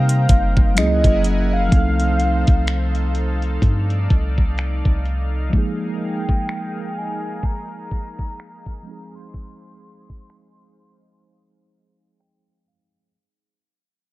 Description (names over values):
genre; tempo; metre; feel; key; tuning
contemporary R&B; 63 BPM; 4/4; swing 58% on 16ths; unclear; A4 = 441 Hz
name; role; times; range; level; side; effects
mellow horn-like synth lead; melody; 0.0-12.7 s; Eb5 to C6; -26 LUFS; equal; chorus, analog delay
mellow tine electric piano; accompaniment; 0.0-13.2 s; F3 to G5; -26 LUFS; right 1 dB; medium stereo tremolo, analog delay
lush unison pad; sustained chords; 0.0-13.1 s; Eb4 to Bb5; -32 LUFS; left 1 dB; chorus
warm 808-style bass; bass; 0.0-5.5 s; F#1 to C3; -19 LUFS; equal; none
smooth R&B drum kit; drums; 0.1-12.5 s; finger snaps, hi-hat, kick drum; -18 LUFS; equal; none
room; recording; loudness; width
little or no reverb; echo-heavy mix, low-pass filter; -17 LUFS; side -18 dB against mid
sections
0.0-13.1 A section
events
fade-out 0.0-13.1; filter sweep 0.0-13.1; break 11.2-13.1; tine electric piano fill 11.7-13.1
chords
0.0 Cm7; 0.8 F#9; 1.7 F7/C; 5.5 Bb7sus4; 8.9 Fm7